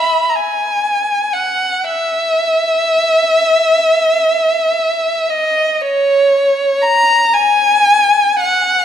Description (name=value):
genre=classical, free, expressive piece for unaccompanied violin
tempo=free time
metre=none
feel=none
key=unclear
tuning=A4 = 440 Hz
part: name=warm violin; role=solo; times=0.0-8.8 s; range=C#5 to B5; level=-11 LUFS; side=equal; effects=none
room=wet concert hall reverb, RT60 2.1 s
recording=minimal, uncompressed stereo recording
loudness=-11 LUFS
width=side -9 dB against mid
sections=0.0-8.8 A section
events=none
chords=none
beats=free time